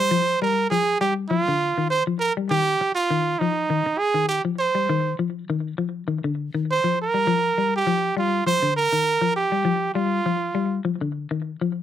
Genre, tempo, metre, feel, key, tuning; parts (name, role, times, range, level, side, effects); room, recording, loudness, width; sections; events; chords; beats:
afrobeat; 101 BPM; 4/4; swing 54% on 16ths; A4 = 440 Hz
bright trumpet; melody; 0.0-10.8 s; Eb4 to C5; -21 LUFS; right 4 dB
semi-hollow electric guitar; arpeggios; 0.0-11.8 s; D3 to G3; -25 LUFS; left 6 dB; slapback echo
light reverb; -20 LUFS; side -10 dB against mid
0.0-11.8 A section
0.0 F7sus2
| 0.12 0.72 1.31 1.91 | 2.51 3.10 3.70 4.30 | 4.89 5.49 6.08 6.68 | 7.28 7.87 8.46 9.06 | 9.65 10.25 10.85 11.44